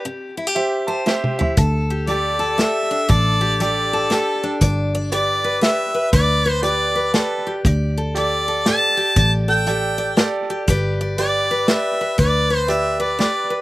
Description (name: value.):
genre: honky-tonk and classic country.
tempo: 119 BPM.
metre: 3/4.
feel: swing 62% on 8ths.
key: unclear.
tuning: A4 = 440 Hz.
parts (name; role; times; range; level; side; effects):
picked steel-string acoustic guitar; accompaniment; 0.0-13.6 s; A2 to D5; -23 LUFS; left 2 dB; none.
bright concert grand piano; accompaniment; 0.6-13.6 s; G4 to A5; -24 LUFS; right 4 dB; none.
unplugged drum kit; drums; 1.1-13.4 s; hi-hat, kick drum, snare drum, toms; -18 LUFS; equal; none.
vintage muted fingered electric bass; bass; 1.6-13.3 s; G1 to D2; -22 LUFS; equal; none.
clear harmonica; melody; 2.1-13.6 s; A4 to A5; -20 LUFS; equal; none.
room: little or no reverb.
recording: recorded outdoors, with no room sound.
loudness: -16 LUFS.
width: side -18 dB against mid.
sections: 0.0-1.6 A section; 1.6-13.6 B section.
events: break 0.1-1.6; grand piano fill 0.6-1.6, 9.9-10.7; drum fill 1.1-1.6.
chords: 0.1 C; 1.6 Dsus4; 4.6 G; 7.6 Dsus4; 10.7 G.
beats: | 0.05 0.56 1.07 | 1.57 2.08 2.58 | 3.09 3.60 4.10 | 4.61 5.12 5.62 | 6.13 6.63 7.14 | 7.64 8.15 8.66 | 9.16 9.67 10.17 | 10.68 11.18 11.69 | 12.20 12.70 13.21.